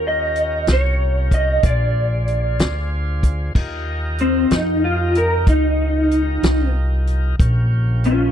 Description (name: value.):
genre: slow blues.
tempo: 62 BPM (dotted quarters).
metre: 12/8.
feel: straight.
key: Eb mixolydian.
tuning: A4 = 440 Hz.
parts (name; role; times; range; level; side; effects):
electric guitar through a small old amp; melody; 0.0-8.3 s; C4 to Eb5; -19 LUFS; equal; ensemble chorus.
tonewheel organ; sustained chords; 0.0-8.3 s; Bb3 to C5; -30 LUFS; equal; slow rotary speaker.
upright bass; bass; 0.0-8.3 s; Bb1 to F2; -19 LUFS; equal; none.
vintage drum kit; drums; 0.4-8.2 s; crash cymbal, hi-hat, kick drum, snare drum; -18 LUFS; equal; none.
room: small room ambience.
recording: dry, close 1970s-style studio recording.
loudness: -16 LUFS.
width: side -10 dB against mid.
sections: 0.0-3.6 A section; 3.6-8.3 B section.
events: clean electric guitar solo 3.6-8.3.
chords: 0.0 Eb9; 1.6 Bb9; 3.6 Eb9.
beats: 0.67 1.63 2.59 | 3.55 4.51 5.47 6.44 | 7.40.